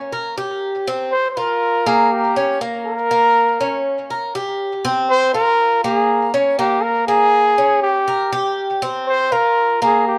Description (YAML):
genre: latin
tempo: 121 BPM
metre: 4/4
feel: straight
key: F minor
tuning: A4 = 440 Hz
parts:
  - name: Cuban tres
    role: arpeggios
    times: 0.0-10.2 s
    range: Bb3 to Bb4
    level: -22 LUFS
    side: equal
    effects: tape echo
  - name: breathy trumpet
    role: melody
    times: 1.1-10.2 s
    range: G4 to C5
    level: -18 LUFS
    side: equal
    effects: none
room: moderate studio ambience, RT60 0.5 s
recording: worn, warbling old tape, cassette tape, warbly pitch drift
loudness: -18 LUFS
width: mono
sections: 0.0-1.1 A section; 1.1-10.2 B section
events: none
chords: 0.1 Gmadd11; 1.1 Fmadd11; 2.1 Bbm; 4.1 Gmadd11; 5.1 F5; 6.1 Bbm; 8.1 Gmadd11; 9.1 F5